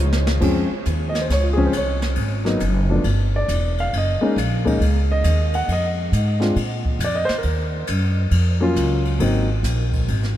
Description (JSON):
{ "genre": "jazz piano trio", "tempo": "137 BPM", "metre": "4/4", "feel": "swing 66% on 8ths", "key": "unclear", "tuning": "A4 = 440 Hz", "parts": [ { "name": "upright bass", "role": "bass", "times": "0.0-10.4 s", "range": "E1 to Bb2", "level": "-20 LUFS", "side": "equal", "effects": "none" }, { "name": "jazz brush drum kit", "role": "drums", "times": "0.1-10.4 s", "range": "crash cymbal, hi-hat, kick drum, ride cymbal, snare drum", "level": "-28 LUFS", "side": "left 1 dB", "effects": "none" }, { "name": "warm grand piano", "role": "melody", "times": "0.4-9.5 s", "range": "F3 to Gb5", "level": "-22 LUFS", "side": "equal", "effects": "none" } ], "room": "moderate huge ambient reverb, RT60 7.4 s", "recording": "in a vast, echoing space", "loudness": "-18 LUFS", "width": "side -12 dB against mid", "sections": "0.4-10.4 A section", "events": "drum fill 0.0-0.4; grand piano solo 0.0-10.4", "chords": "0.4 Dbmaj9; 2.2 Abm7; 3.1 G5; 3.9 Gb6; 5.7 Fm; 6.6 Bb5; 7.4 Ebm9; 9.2 Ab7", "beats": "| 0.42 0.86 1.30 1.74 | 2.17 2.61 3.05 3.49 | 3.93 4.37 4.81 5.25 | 5.69 6.12 6.56 7.00 | 7.44 7.88 8.32 8.76 | 9.20 9.64 10.07" }